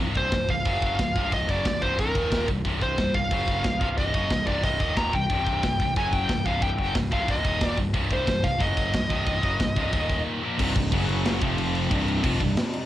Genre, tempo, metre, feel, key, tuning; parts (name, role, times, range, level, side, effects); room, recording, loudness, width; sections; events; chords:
heavy metal; 181 BPM; 4/4; straight; A4 = 440 Hz
heavy high-gain guitar; riff; 0.0-12.5 s; C2 to Bb3; -32 LUFS; right 7 dB; distortion, cassette tape
high-gain distorted guitar; riff; 0.0-12.5 s; C2 to Bb3; -31 LUFS; left 7 dB; distortion, cassette tape
growling picked electric bass; bass; 0.0-12.6 s; C1 to F#1; -31 LUFS; equal; overdrive
tight metal drum kit; drums; 0.1-12.8 s; crash cymbal, hi-hat, kick drum, snare drum; -27 LUFS; equal; cassette tape
high-gain lead guitar; melody; 0.2-10.2 s; Bb4 to Bb5; -27 LUFS; equal; distortion, cassette tape
bright studio string section; sustained chords; 10.6-12.9 s; C3 to F#5; -34 LUFS; equal; cassette tape
thick fuzz guitar; riff; 10.6-12.5 s; C2 to F#3; -28 LUFS; equal; distortion, cassette tape
small room ambience; home recording on cassette; -22 LUFS; side -13 dB against mid
0.0-10.6 A section; 10.6-12.9 B section
break 10.3-10.6; half time 10.6-12.9
0.0 C5; 0.7 F#5; 1.0 C5; 2.2 Eb5; 2.5 C5; 3.3 F#5; 3.6 Cm; 4.8 Eb5; 5.1 C5; 6.0 F#5; 6.3 C5; 7.5 Eb5; 7.8 C5; 8.6 F#5; 8.9 Cm; 9.9 Eb5; 10.4 Bb5; 10.6 Cm; 10.9 F#5; 11.4 F5; 11.9 Cm